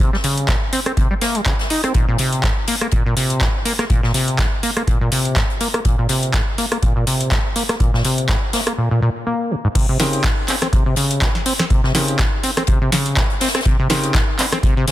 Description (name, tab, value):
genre	acid house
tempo	123 BPM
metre	4/4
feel	swing 56% on 16ths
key	C phrygian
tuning	A4 = 441 Hz
part	liquid acid bass	riff	0.0-14.9 s	Ab2 to Eb4	-20 LUFS	equal	chorus, cassette tape, ping-pong delay
part	booming analog drum machine	drums	0.0-14.9 s	crash cymbal, handclaps, hi-hat, rim click, snare drum	-22 LUFS	equal	none
part	electronic kick drum	drums	0.0-14.7 s	none	-18 LUFS	equal	none
part	swinging big-band drum kit	drums	0.0-14.9 s	hi-hat, snare drum	-29 LUFS	left 3 dB	sidechain pumping on hats, high-pass filter on hats, high-pass filter on snare, high-pass filter on room
part	clear grand piano	stabs	10.0-14.1 s	C4 to Bb4	-25 LUFS	equal	ping-pong delay
room	studio reverb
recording	dense, heavily limited modern master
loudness	-15 LUFS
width	side -14 dB against mid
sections	0.0-9.8 A section; 9.8-14.9 B section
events	drop 9.8-14.9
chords	0.0 C7(no3); 1.9 Abadd9 (rootless); 9.8 C7(no3)